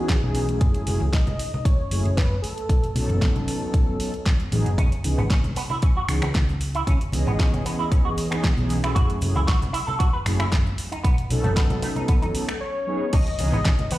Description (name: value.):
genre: nu-disco, nu disco.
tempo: 115 BPM.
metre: 4/4.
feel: straight.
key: C# minor.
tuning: A4 = 439 Hz.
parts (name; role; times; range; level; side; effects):
wide unison lead; melody; 0.0-3.4, 12.6-14.0 s; G#4 to D#5; -31 LUFS; left 1 dB; cassette tape, tape echo.
mellow synth brass; accompaniment; 0.0-13.6 s; E3 to D#5; -29 LUFS; equal; chorus, slapback echo.
electronic kick drum; drums; 0.1-13.8 s; none; -21 LUFS; equal; none.
pop drum kit; drums; 0.1-14.0 s; crash cymbal, finger snaps, hi-hat, snare drum; -31 LUFS; equal; none.
hollow-body short-scale picked electric bass; bass; 0.2-13.6 s; F#1 to C#2; -24 LUFS; equal; none.
congas and cabasa; percussion; 0.3-14.0 s; none; -31 LUFS; left 1 dB; none.
electric guitar with an envelope filter; riff; 4.8-14.0 s; A3 to B4; -30 LUFS; right 2 dB; analog chorus, slapback echo.
room: light reverb, digital ambience.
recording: played on a big sound system in a bare room, stone room reverb.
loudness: -20 LUFS.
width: side -16 dB against mid.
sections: 0.0-13.1 A section.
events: break 12.6-13.1.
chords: 0.0 C#m9; 0.6 F#m9; 2.4 B9; 4.8 C#m9; 9.0 F#m9; 10.8 B9; 13.1 C#m9.